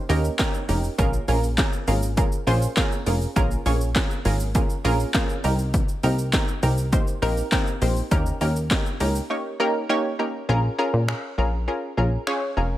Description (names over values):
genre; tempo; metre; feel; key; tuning
dance-pop; 101 BPM; 4/4; straight; Bb dorian; A4 = 440 Hz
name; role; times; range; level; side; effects
punchy chord stab; accompaniment; 0.0-12.8 s; Bb3 to Db5; -25 LUFS; right 1 dB; chorus, sidechain pumping
plucky analog bass; bass; 0.1-12.8 s; F1 to Bb2; -22 LUFS; equal; sidechain pumping
house drum kit; drums; 0.1-12.4 s; finger snaps, handclaps, hi-hat, kick drum, shaker, snare drum; -24 LUFS; equal; overdrive
room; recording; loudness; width
little or no reverb; none; -20 LUFS; side -14 dB against mid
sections
0.0-10.5 A section; 10.5-12.8 B section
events
drums muted 9.3-10.5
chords
0.0 Eb7; 1.0 Bbm7; 5.4 Cm7; 8.1 Eb7; 10.5 Bbm7